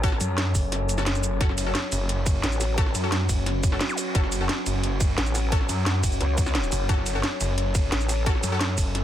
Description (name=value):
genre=dark technical drum and bass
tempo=175 BPM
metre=4/4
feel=straight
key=F# minor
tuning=A4 = 440 Hz
part: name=metallic inharmonic drone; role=sustained chords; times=0.0-9.0 s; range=F#3 to A4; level=-31 LUFS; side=left 2 dB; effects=chorus, built-in reverb, sidechain pumping
part: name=orchestra-hit-like synth stab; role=stabs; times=0.0-8.6 s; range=C#4 to A4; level=-33 LUFS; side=left 2 dB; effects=built-in reverb, dub echo
part: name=vowel-sweep wobble bass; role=bass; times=0.0-0.2, 2.4-2.9, 5.2-8.4 s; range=A1 to C#2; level=-26 LUFS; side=equal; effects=chorus
part: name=drum and bass drum kit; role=drums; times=0.0-9.0 s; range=hi-hat, ride cymbal, shaker, snare drum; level=-28 LUFS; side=right 1 dB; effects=none
part: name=electronic kick drum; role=drums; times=0.0-8.8 s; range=none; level=-23 LUFS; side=equal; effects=none
part: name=snarling distorted saw bass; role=bass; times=0.2-9.0 s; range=F#1 to F#2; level=-26 LUFS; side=equal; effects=distortion, sidechain pumping
part: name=zap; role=sound effects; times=3.9-4.0 s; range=none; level=-35 LUFS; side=right 1 dB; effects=none
room=little or no reverb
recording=dense, heavily limited modern master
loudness=-22 LUFS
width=side -11 dB against mid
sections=0.0-9.0 A section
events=kick drops out 0.7-1.4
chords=0.0 F#m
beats=| 0.04 0.38 0.72 1.06 | 1.41 1.75 2.09 2.44 | 2.78 3.12 3.46 3.81 | 4.15 4.49 4.83 5.18 | 5.52 5.86 6.21 6.55 | 6.89 7.24 7.58 7.92 | 8.26 8.61 8.95